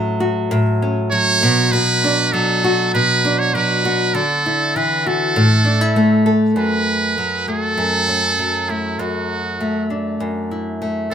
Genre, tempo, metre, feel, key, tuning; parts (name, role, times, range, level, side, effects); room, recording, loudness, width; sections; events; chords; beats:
acoustic pop; 99 BPM; 4/4; straight; A4 = 435 Hz
nylon-string guitar; accompaniment; 0.0-11.1 s; F#2 to A4; -17 LUFS; left 1 dB
trumpet with metal mute; melody; 1.1-11.1 s; E4 to C#5; -18 LUFS; right 3 dB
little or no reverb; minimal, uncompressed stereo recording; -15 LUFS; side -8 dB against mid
0.0-6.6 A section; 6.6-11.1 B section
0.0 F#m/A; 1.4 Bm; 4.1 Dadd9; 5.4 A5; 6.6 F#m; 9.0 Dadd9/F#
0.50 1.11 | 1.72 2.32 2.93 3.53 | 4.14 4.75 5.35 5.96 | 6.57 7.17 7.78 8.38 | 8.99 9.60 10.20 10.81